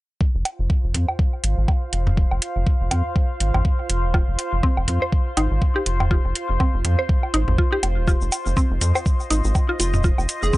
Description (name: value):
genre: minimal techno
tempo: 122 BPM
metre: 4/4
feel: swing 57% on 16ths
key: F minor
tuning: A4 = 440 Hz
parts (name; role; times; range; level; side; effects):
- electronic kick drum; drums; 0.2-10.6 s; none; -19 LUFS; equal; overdrive
- warbly tape-like pad; texture; 0.6-10.6 s; F4 to C6; -30 LUFS; equal; chorus, built-in reverb, sidechain pumping
- rubbery square bass; bass; 0.3-10.5 s; Eb1 to F2; -21 LUFS; equal; sidechain pumping
- electronic hi-hat; drums; 0.5-10.4 s; none; -24 LUFS; right 1 dB; overdrive
- electronic woodblock and toms; percussion; 0.5-10.3 s; none; -25 LUFS; equal; overdrive
- mallet-like synth pluck; riff; 4.1-10.6 s; C4 to C5; -25 LUFS; equal; chorus, sidechain pumping, tape echo
- egg shaker; percussion; 8.1-10.6 s; none; -31 LUFS; left 2 dB; none
- plucky unison lead; melody; 9.8-10.6 s; F4 to Ab4; -26 LUFS; right 2 dB; analog delay
room: little or no reverb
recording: dry, gritty hardware recording, nothing above 10.5 kHz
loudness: -18 LUFS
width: side -19 dB against mid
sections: 0.2-10.6 A section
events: none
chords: 0.2 F5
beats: | 0.21 0.70 1.19 1.68 | 2.17 2.67 3.16 3.65 | 4.14 4.63 5.12 5.62 | 6.11 6.60 7.09 7.58 | 8.08 8.57 9.06 9.55 | 10.04 10.54